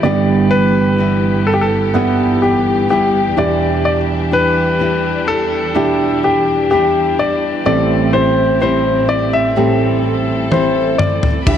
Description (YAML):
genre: pop ballad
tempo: 63 BPM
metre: 4/4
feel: straight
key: unclear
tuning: A4 = 442 Hz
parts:
  - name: bright concert grand piano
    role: melody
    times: 0.0-11.6 s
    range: G4 to E5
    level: -16 LUFS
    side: left 2 dB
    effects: none
  - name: warm grand piano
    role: accompaniment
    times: 0.0-11.6 s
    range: G1 to F#5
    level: -17 LUFS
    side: right 4 dB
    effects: none
  - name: warm symphonic string section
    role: sustained chords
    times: 0.0-11.6 s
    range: E2 to B5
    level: -22 LUFS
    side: equal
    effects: none
  - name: nylon-string guitar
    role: arpeggios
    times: 0.0-11.6 s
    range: E2 to E4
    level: -21 LUFS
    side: left 7 dB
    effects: none
  - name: modern studio drum kit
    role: drums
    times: 10.5-11.6 s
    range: crash cymbal, kick drum, toms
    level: -16 LUFS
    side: left 1 dB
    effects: none
room: moderate concert hall reverb, RT60 2.3 s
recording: dark, warm production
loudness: -12 LUFS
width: side -9 dB against mid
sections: 0.0-11.5 A section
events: drum fill 10.5-11.5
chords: 0.0 G6; 3.4 Em7; 7.7 Am7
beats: | 0.04 0.99 1.94 2.89 | 3.85 4.80 5.75 6.70 | 7.66 8.61 9.56 10.51 | 11.47